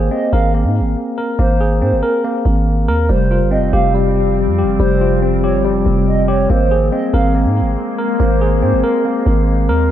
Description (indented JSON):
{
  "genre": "hip hop",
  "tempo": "141 BPM",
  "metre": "4/4",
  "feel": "half-time",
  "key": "unclear",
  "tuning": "A4 = 440 Hz",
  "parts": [
    { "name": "hollow clarinet-like synth lead", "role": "second line", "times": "0.0-9.0 s", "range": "Bb4 to F5", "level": "-21 LUFS", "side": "right 4 dB", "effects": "chorus, digital delay" },
    { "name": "tine electric piano", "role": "arpeggios", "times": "0.0-9.9 s", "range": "G3 to Bb4", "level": "-17 LUFS", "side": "left 2 dB", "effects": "fast stereo tremolo, low-pass filter, digital delay" },
    { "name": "growling 808-style bass", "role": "bass", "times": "0.0-9.9 s", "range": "F1 to Ab2", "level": "-15 LUFS", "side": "equal", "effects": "none" },
    { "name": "glassy FM pad", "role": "sustained chords", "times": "3.5-9.9 s", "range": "F3 to C4", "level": "-22 LUFS", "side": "left 2 dB", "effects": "ensemble chorus, built-in reverb" }
  ],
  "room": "light reverb",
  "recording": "dark, warm production",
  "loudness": "-13 LUFS",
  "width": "side -11 dB against mid",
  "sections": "0.0-3.1 A section; 3.1-9.9 B section",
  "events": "none",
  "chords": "0.0 Abadd9; 3.1 Fsus2; 6.5 Abadd9",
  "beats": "0.11 0.54 0.96 | 1.39 1.82 2.24 2.67 | 3.09 3.52 3.94 4.37 | 4.79 5.22 5.65 6.07 | 6.50 6.92 7.35 7.77 | 8.20 8.62 9.05 9.48 | 9.90"
}